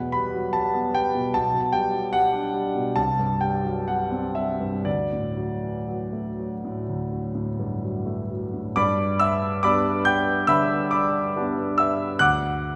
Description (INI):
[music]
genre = classical, romantic character piece for solo piano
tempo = 58-76 BPM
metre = 4/4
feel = rubato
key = G major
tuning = A4 = 440 Hz
[part]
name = warm grand piano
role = solo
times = 0.0-12.8 s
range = B1 to G6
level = -24 LUFS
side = equal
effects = none
[sound]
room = wet recital hall reverb, RT60 1.5 s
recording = recorded in a church or concert hall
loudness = -24 LUFS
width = mono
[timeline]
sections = 0.0-8.8 A section; 8.8-12.8 B section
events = none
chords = 0.0 Em; 1.3 G/B; 3.0 C5; 4.9 D; 8.8 G; 12.2 D